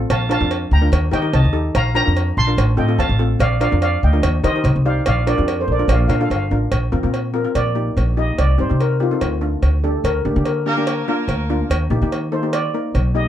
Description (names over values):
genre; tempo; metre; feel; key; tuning
calypso; 145 BPM; 4/4; swing 54% on 16ths; Bb major; A4 = 441 Hz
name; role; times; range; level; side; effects
steel pan; accompaniment; 0.0-13.3 s; A3 to C5; -23 LUFS; left 1 dB; none
upright bass; bass; 0.0-13.3 s; G1 to Eb3; -18 LUFS; equal; none
steel pan; melody; 0.1-13.2 s; F4 to C6; -22 LUFS; left 1 dB; none
cowbell; percussion; 0.1-13.1 s; none; -25 LUFS; right 3 dB; none
clear horn section; second line; 10.7-11.9 s; Bb3 to Bb4; -24 LUFS; equal; none
room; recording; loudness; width
light reverb; dark, warm production; -16 LUFS; side -11 dB against mid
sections
0.0-6.7 A section; 6.7-13.3 B section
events
steel pan solo 6.7-13.3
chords
0.1 Bbmaj7; 0.9 Eb; 1.7 Bbmaj7; 2.6 F7/A; 3.4 Bb; 4.2 Eb; 5.1 Bb; 6.7 Bbsus2; 7.5 Eb/Bb; 8.4 Cm; 9.2 Dm; 10.0 Gm/D; 11.7 Eb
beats
| 0.09 0.51 0.92 1.33 | 1.75 2.16 2.58 2.99 | 3.40 3.82 4.23 4.65 | 5.06 5.47 5.89 6.30 | 6.72 7.13 7.55 7.96 | 8.38 8.79 9.21 9.63 | 10.04 10.46 10.87 11.29 | 11.70 12.12 12.53 12.95